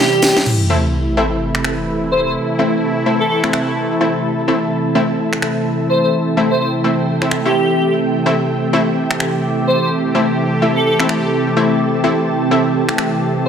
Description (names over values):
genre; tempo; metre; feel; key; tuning
bass house; 127 BPM; 4/4; swing 59% on 16ths; A minor; A4 = 438 Hz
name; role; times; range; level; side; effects
airy dreamy lead; melody; 0.0-13.5 s; G4 to C5; -19 LUFS; equal; chorus, digital delay
sweeping resonant pad; sustained chords; 0.0-13.5 s; C3 to G4; -18 LUFS; equal; chorus
house drum kit; drums; 0.2-13.1 s; crash cymbal, finger snaps, hi-hat, snare drum; -20 LUFS; equal; none
sub drop; sound effects; 0.5-2.4 s; none; -20 LUFS; equal; none
ethereal airy pad; texture; 1.1-13.5 s; C4 to A5; -22 LUFS; right 2 dB; ensemble chorus, built-in reverb
orchestra-hit-like synth stab; stabs; 0.7-12.6 s; A3 to E4; -19 LUFS; left 2 dB; built-in reverb, digital delay
room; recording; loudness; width
moderate lush hall reverb, RT60 2.2 s; none; -14 LUFS; side -7 dB against mid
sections
0.5-13.5 A section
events
drum fill 0.0-0.5; impact 0.5-2.4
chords
0.5 Am